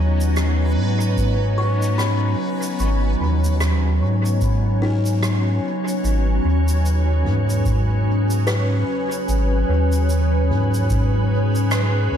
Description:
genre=ambient dub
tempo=74 BPM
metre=4/4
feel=swing 60% on 16ths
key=G# minor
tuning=A4 = 440 Hz
part: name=soft additive organ-like pad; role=sustained chords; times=0.0-12.2 s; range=F#3 to C#5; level=-23 LUFS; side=equal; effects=ensemble chorus, built-in reverb
part: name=buzzing kalimba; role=arpeggios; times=0.0-12.2 s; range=D#4 to C#6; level=-31 LUFS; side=left 4 dB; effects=dub echo
part: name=soft dub sub bass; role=bass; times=0.0-12.1 s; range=G#1 to G#2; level=-18 LUFS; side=equal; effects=none
part: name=backwards swelling texture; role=texture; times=0.0-6.1 s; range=B3 to B4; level=-32 LUFS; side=right 2 dB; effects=built-in reverb
part: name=soft-mallet drum kit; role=drums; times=0.2-12.2 s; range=rim click, shaker, toms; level=-30 LUFS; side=right 1 dB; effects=studio reverb, dub echo
part: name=electronic kick drum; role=drums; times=1.2-11.1 s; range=none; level=-24 LUFS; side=equal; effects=studio reverb
room=studio reverb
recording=echo-heavy mix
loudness=-17 LUFS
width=side -9 dB against mid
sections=0.0-6.0 A section; 6.0-12.2 B section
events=none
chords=0.0 Badd9; 6.0 G#m7

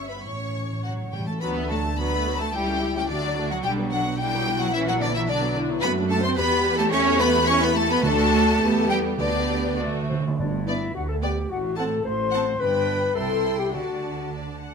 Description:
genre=quick classical-period movement for symphony orchestra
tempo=99-111 BPM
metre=2/4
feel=rubato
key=D major, G major from 5.8 s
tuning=A4 = 441 Hz
part: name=clear chamber violin section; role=melody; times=0.0-14.7 s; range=D5 to C#6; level=-29 LUFS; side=left 3 dB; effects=none
part: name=rich studio violin section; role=second line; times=0.0-14.7 s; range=D4 to G5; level=-29 LUFS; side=left 2 dB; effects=none
part: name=rich chamber viola section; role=accompaniment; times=0.0-14.7 s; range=D3 to E5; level=-31 LUFS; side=right 2 dB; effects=none
part: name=dark French horn section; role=sustained chords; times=0.0-14.3 s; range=B3 to C5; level=-28 LUFS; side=left 6 dB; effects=none
part: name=rich chamber cello section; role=bass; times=0.0-14.7 s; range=D2 to C#4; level=-28 LUFS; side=right 4 dB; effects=none
part: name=rich chamber double bass section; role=bass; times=0.0-14.7 s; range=G1 to F#2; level=-30 LUFS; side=right 3 dB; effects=none
part: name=timpani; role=percussion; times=0.2-1.3, 8.0-11.2, 13.7-14.6 s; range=G2 to D3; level=-31 LUFS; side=right 3 dB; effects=none
part: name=silver concert flute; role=second line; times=0.8-14.3 s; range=D5 to C#6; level=-31 LUFS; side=left 3 dB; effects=none
part: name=mellow clarinet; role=second line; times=9.8-14.3 s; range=D4 to D5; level=-33 LUFS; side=equal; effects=none
room=moderate recital hall reverb, RT60 1.4 s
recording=none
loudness=-21 LUFS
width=side -6 dB against mid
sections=0.0-1.4 A section; 1.4-10.4 B section; 10.4-14.7 C section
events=timpani fill 0.2-1.4, 9.8-10.4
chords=0.2 A; 1.4 D; 2.6 A7/C#; 3.1 D; 3.7 Bm; 4.7 F#7/A#; 5.3 Bm; 5.8 D/F#; 6.4 Em; 6.9 A7/E; 8.0 D; 8.6 Em; 9.2 G/D; 9.8 D; 10.4 G; 11.5 F#dim/A; 12.6 G; 13.2 C; 13.7 D

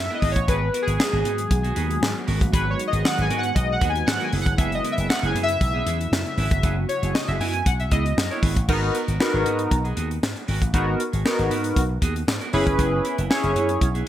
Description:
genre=early-eighties boogie funk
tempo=117 BPM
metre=4/4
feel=straight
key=G# minor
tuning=A4 = 438 Hz
part: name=chorused polysynth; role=accompaniment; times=0.0-13.9 s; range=B3 to G#5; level=-24 LUFS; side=left 1 dB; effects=none
part: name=slap bass with an envelope filter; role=bass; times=0.0-14.0 s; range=F#1 to G#2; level=-25 LUFS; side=equal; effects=none
part: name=clean electric guitar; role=riff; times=0.1-14.1 s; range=B3 to A#4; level=-31 LUFS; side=right 6 dB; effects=wide subtle chorus
part: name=tight funk drum kit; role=drums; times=0.2-14.1 s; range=crash cymbal, handclaps, hi-hat, kick drum, snare drum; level=-24 LUFS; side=equal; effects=gated reverb
part: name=warm analog pad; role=sustained chords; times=0.5-8.7 s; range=C#3 to F#4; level=-32 LUFS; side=equal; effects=chorus
room=light reverb, small room ambience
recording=bright 1980s-style digital production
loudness=-20 LUFS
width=side -12 dB against mid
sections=0.0-8.7 A section; 8.7-14.1 B section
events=analog polysynth solo 0.0-8.7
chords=0.5 G#m7; 4.3 F#9sus4; 8.7 G#m7; 12.5 F#9sus4

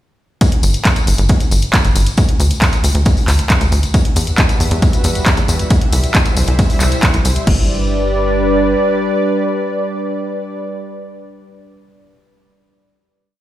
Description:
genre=uplifting trance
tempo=136 BPM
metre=4/4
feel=straight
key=G major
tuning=A4 = 438 Hz
part: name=electronic kick drum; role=drums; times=0.4-7.6 s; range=none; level=-14 LUFS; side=equal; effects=overdrive
part: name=punchy analog drum machine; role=drums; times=0.4-7.6 s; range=crash cymbal, handclaps, hi-hat, ride cymbal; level=-20 LUFS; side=equal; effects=none
part: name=tambourine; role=percussion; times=0.4-7.4 s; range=none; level=-25 LUFS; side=left 5 dB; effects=none
part: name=tight sequencer bass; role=bass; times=0.6-8.8 s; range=G1 to E2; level=-15 LUFS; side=equal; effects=sidechain pumping
part: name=lush unison pad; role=sustained chords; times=4.3-10.7 s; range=G3 to D5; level=-18 LUFS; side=equal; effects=chorus, sidechain pumping
room=light reverb, digital ambience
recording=played on a big sound system in a bare room, large studio reverb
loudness=-12 LUFS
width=side -13 dB against mid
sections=0.4-7.5 drop; 7.5-11.0 final chord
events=drop 0.4-7.5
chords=0.4 N.C.; 3.9 Emadd9; 5.7 C; 7.5 G

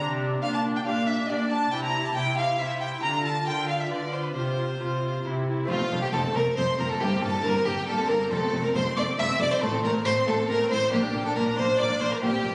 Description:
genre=classical, baroque-style concerto movement with solo episodes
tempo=138 BPM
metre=3/4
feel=straight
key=F major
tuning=A4 = 439 Hz
part: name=warm chamber violin section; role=melody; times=0.0-12.5 s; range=F4 to E6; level=-38 LUFS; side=equal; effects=none
part: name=lute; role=accompaniment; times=0.0-12.5 s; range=F2 to G4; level=-38 LUFS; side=equal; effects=none
part: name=warm symphonic viola section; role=accompaniment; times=0.0-12.5 s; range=A3 to F4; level=-35 LUFS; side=equal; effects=none
part: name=warm symphonic cello section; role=bass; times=0.0-12.5 s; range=F2 to D3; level=-33 LUFS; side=equal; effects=none
part: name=warm violin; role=melody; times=0.4-12.5 s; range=F4 to Bb5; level=-31 LUFS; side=equal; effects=none
part: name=warm chamber violin section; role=second line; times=0.4-12.5 s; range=F4 to Bb5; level=-32 LUFS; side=equal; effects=none
part: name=dark chamber double bass section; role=bass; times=5.7-12.5 s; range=F1 to Bb1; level=-36 LUFS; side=equal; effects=none
room=wet concert hall reverb, RT60 2.1 s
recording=recorded on a phone in the room, studio reverb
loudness=-26 LUFS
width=mono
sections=0.0-5.7 A section; 5.7-12.5 B section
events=none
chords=0.0 Gm/Bb; 1.7 C; 3.0 Bb/D; 3.9 G7/D; 4.3 Csus4; 5.2 C; 5.7 F; 7.0 C7/G; 8.3 F; 9.6 F/A; 10.9 Bbmaj13

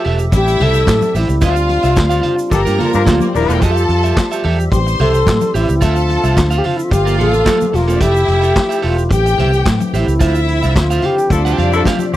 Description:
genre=disco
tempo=109 BPM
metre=4/4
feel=straight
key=D minor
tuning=A4 = 440 Hz
part: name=mellow wooden-headed alto flute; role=melody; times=0.0-12.1 s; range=E4 to A4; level=-17 LUFS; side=left 1 dB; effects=none
part: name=clear studio string section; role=second line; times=0.0-12.1 s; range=A3 to C6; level=-22 LUFS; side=left 2 dB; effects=none
part: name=electric guitar at the edge of break-up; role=accompaniment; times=0.0-12.2 s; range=Bb3 to G5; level=-21 LUFS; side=right 6 dB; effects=none
part: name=percussive tonewheel organ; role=sustained chords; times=0.0-12.2 s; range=C3 to E5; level=-25 LUFS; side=left 1 dB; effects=overdrive, slow rotary speaker
part: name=vintage drum kit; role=drums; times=0.0-12.2 s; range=handclaps, hi-hat, kick drum, snare drum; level=-17 LUFS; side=equal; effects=none
part: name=vintage muted fingered electric bass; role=bass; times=0.1-12.2 s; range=Eb1 to A2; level=-16 LUFS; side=equal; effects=none
part: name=egg shaker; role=percussion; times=0.2-12.2 s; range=none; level=-36 LUFS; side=right 21 dB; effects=none
part: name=congas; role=percussion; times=0.3-12.1 s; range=none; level=-24 LUFS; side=left 5 dB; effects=none
part: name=warm horn section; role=stabs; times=2.5-3.6, 11.3-12.2 s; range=F3 to C5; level=-18 LUFS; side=left 7 dB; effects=none
room=little or no reverb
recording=dry, close 1970s-style studio recording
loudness=-11 LUFS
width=side -14 dB against mid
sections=0.0-12.2 A section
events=band accent 1.4-3.6, 10.2-12.2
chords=0.3 Am7; 1.4 Dm9; 2.5 Gm9; 3.6 Fmaj9; 4.7 Am7; 5.8 Dm9; 6.9 Gm9; 8.0 Fmaj9; 9.1 Am7; 10.2 Dm9; 11.3 Dm11

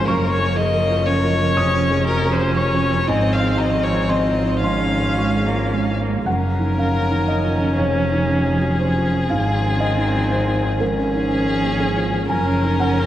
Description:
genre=neoclassical piano and strings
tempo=119 BPM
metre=3/4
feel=rubato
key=Db major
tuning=A4 = 440 Hz
part: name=rich violin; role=melody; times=0.0-13.1 s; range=Ab4 to F5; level=-23 LUFS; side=left 3 dB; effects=none
part: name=dark cello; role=second line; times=0.0-13.1 s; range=Eb3 to Bb3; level=-26 LUFS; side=right 3 dB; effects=none
part: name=felt-muted upright piano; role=accompaniment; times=0.0-13.1 s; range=F2 to Eb6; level=-22 LUFS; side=right 1 dB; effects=none
part: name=rich viola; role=accompaniment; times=0.0-13.1 s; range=Bb3 to Db4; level=-26 LUFS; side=right 1 dB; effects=none
part: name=warm double bass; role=bass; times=0.0-13.1 s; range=F1 to Ab1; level=-22 LUFS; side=equal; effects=none
room=wet cathedral reverb, RT60 5.9 s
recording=in a vast, echoing space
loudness=-16 LUFS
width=side -12 dB against mid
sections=0.0-6.3 A section; 6.3-13.1 B section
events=none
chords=0.1 Gbmaj7; 1.6 Db/F; 3.1 Ab6; 4.6 Db/Ab; 6.3 Gbmaj7; 7.8 Db/F; 9.3 Ab6; 10.8 Db/Ab; 12.3 Gbmaj7

